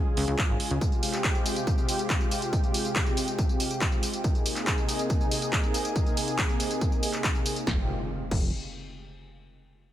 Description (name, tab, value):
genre	uplifting trance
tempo	140 BPM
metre	4/4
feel	straight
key	F minor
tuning	A4 = 440 Hz
part	lush unison pad	sustained chords	0.0-7.9 s	C3 to Ab4	-30 LUFS	equal	chorus, sidechain pumping
part	plucky analog bass	bass	0.2-0.8, 7.7-8.5 s	F1 to Db2	-29 LUFS	equal	sidechain pumping
part	punchy analog drum machine	drums	0.2-8.4 s	crash cymbal, handclaps, hi-hat, snare drum, tambourine	-31 LUFS	equal	studio reverb
part	electronic kick drum	drums	0.4-8.4 s	none	-27 LUFS	equal	studio reverb
part	impact	sound effects	7.7-9.4 s	none	-37 LUFS	equal	none
room	little or no reverb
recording	none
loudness	-24 LUFS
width	side -12 dB against mid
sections	0.0-7.7 A section; 7.7-9.4 B section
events	none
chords	0.0 Db; 0.8 Fmadd9; 4.2 Abadd9; 7.7 Fmadd9